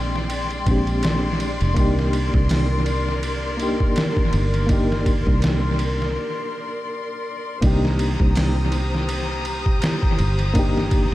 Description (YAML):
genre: trip hop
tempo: 82 BPM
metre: 4/4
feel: swing 57% on 16ths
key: C minor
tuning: A4 = 440 Hz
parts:
  - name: bright reed electric piano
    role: accompaniment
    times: 0.0-11.1 s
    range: Ab3 to G4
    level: -26 LUFS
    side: equal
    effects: overdrive, tremolo, vintage 12-bit sampler grit, tape echo
  - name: warm chamber string section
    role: sustained chords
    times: 0.0-11.1 s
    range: Ab3 to Eb6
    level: -27 LUFS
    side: left 2 dB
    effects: none
  - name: fingered electric bass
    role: bass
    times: 0.0-11.1 s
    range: F1 to C2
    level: -22 LUFS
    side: equal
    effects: none
  - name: trip hop sampler-style drum kit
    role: drums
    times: 0.2-11.1 s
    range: hi-hat, kick drum, ride cymbal, snare drum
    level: -22 LUFS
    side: equal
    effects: overdrive, small room ambience, analog delay
room: digital ambience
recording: echo-heavy mix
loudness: -18 LUFS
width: side -16 dB against mid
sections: 0.0-7.6 A section; 7.6-11.1 B section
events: break 6.2-7.6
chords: 0.0 Bb13; 1.8 Cm9